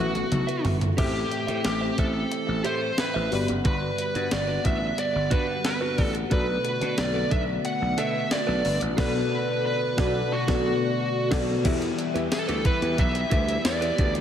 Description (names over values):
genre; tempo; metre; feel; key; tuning
1980s-style pop; 90 BPM; 4/4; straight; E minor; A4 = 440 Hz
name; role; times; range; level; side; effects
high-gain lead guitar; melody; 0.0-14.1 s; F#4 to F#5; -28 LUFS; equal; distortion
FM electric piano with soft pad layer; accompaniment; 0.0-14.2 s; G2 to E5; -30 LUFS; left 2 dB; chorus, tremolo, slapback echo
chorused pulse-width pad; sustained chords; 0.0-14.2 s; D3 to F#5; -34 LUFS; equal; none
direct-recorded clean electric guitar; riff; 0.0-14.2 s; D4 to E5; -35 LUFS; right 4 dB; wide subtle chorus, slapback echo
gritty slap bass; bass; 0.0-14.2 s; F#1 to B2; -30 LUFS; equal; overdrive
clean 12-bit digital drum machine; drums; 0.1-14.2 s; crash cymbal, hi-hat, kick drum, snare drum, tambourine, toms; -28 LUFS; equal; none
sludgy distorted guitar; accompaniment; 11.6-14.2 s; E3 to E4; -37 LUFS; left 1 dB; overdrive, lush chorus, slapback echo
room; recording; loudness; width
wet lush hall reverb, RT60 2.4 s; big arena sound; -22 LUFS; side -9 dB against mid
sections
1.0-11.7 A section; 11.7-14.2 B section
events
drum fill 0.0-1.0; band accent 9.0-11.7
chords
0.0 Bsus4; 1.0 Am7; 3.3 Gmaj7; 6.3 Bm7; 11.7 Em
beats
0.32 | 0.98 1.65 2.32 2.98 | 3.65 4.32 4.98 5.65 | 6.32 6.98 7.65 8.32 | 8.98 9.65 10.32 10.98 | 11.65 12.32 12.98 13.65